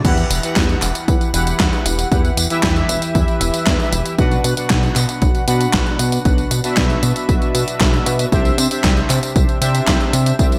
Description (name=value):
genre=italo disco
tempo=116 BPM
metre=4/4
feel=straight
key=E minor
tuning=A4 = 442 Hz
part: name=analog synth brass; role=stabs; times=0.0-10.6 s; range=B2 to F#5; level=-23 LUFS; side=equal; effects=chorus
part: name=chorused synth bass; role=bass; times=0.0-10.6 s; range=E1 to C3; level=-22 LUFS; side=equal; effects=none
part: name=electronic kick drum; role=drums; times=0.0-10.5 s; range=none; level=-20 LUFS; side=equal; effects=none
part: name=gated 80s digital drum machine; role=drums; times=0.0-10.6 s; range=crash cymbal, handclaps, hi-hat, snare drum, tambourine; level=-23 LUFS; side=equal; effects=gated reverb, gated reverb snare, overdrive
room=digital ambience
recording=none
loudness=-17 LUFS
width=mono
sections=0.0-10.6 A section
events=none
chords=0.0 Emadd9; 4.2 Bm; 8.3 Cadd9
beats=| 0.05 0.56 1.08 1.60 | 2.12 2.63 3.15 3.67 | 4.18 4.70 5.22 5.74 | 6.25 6.77 7.29 7.80 | 8.32 8.84 9.36 9.87 | 10.39